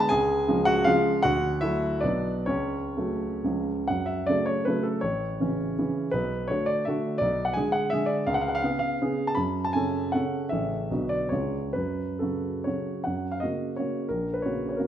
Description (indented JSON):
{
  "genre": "classical, romantic triple-time dance for piano with dotted rhythms",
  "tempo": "123-190 BPM",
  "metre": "3/4",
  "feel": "rubato",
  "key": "F# minor",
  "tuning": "A4 = 440 Hz",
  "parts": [
    { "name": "warm grand piano", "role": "solo", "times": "0.0-14.9 s", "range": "A1 to B5", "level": "-24 LUFS", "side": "equal", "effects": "none" }
  ],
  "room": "wet recital hall reverb, RT60 1.3 s",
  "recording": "none",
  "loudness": "-24 LUFS",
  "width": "side -10 dB against mid",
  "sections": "0.0-3.9 A section; 3.9-13.1 B section; 13.1-14.9 C section",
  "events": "none",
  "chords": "0.1 C#; 1.2 D; 2.0 Bm; 2.5 F#m/C#; 3.4 C#; 3.9 F#m; 5.0 A; 6.1 Bm7; 7.2 G#dim/B; 8.3 C#7; 9.4 F#m; 10.5 A; 10.9 Bm; 11.3 C#; 11.7 F#m; 13.1 F#; 14.1 F#/A#",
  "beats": "| 0.12 0.48 0.88 | 1.25 1.62 2.04 | 2.49 2.96 3.44 | 3.88 4.28 4.66 | 5.03 5.40 5.78 | 6.13 6.49 6.86 | 7.20 7.55 7.92 | 8.26 8.63 9.00 | 9.37 9.75 10.14 | 10.51 10.90 11.31 | 11.74 12.21 12.66 | 13.07 13.43 13.79 | 14.11 14.45 14.79"
}